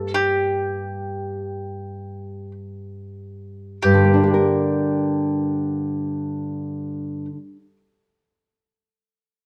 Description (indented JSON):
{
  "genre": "romantic duo for mandolin and classical guitar",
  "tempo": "free time",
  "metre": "none",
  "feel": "none",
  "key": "G minor",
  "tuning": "A4 = 441 Hz",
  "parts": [
    { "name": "bowl-back mandolin", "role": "melody", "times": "0.0-7.2 s", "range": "G4 to A4", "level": "-26 LUFS", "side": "equal", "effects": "none" },
    { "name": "nylon-string guitar", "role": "accompaniment", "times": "0.0-7.8 s", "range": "G2 to Bb4", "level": "-24 LUFS", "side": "equal", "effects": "none" }
  ],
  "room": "light reverb",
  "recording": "dark, warm production",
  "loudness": "-22 LUFS",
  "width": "mono",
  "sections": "0.0-3.8 A section; 3.8-8.7 B section",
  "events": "slowing down 0.0-3.8",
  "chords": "0.0 Gm"
}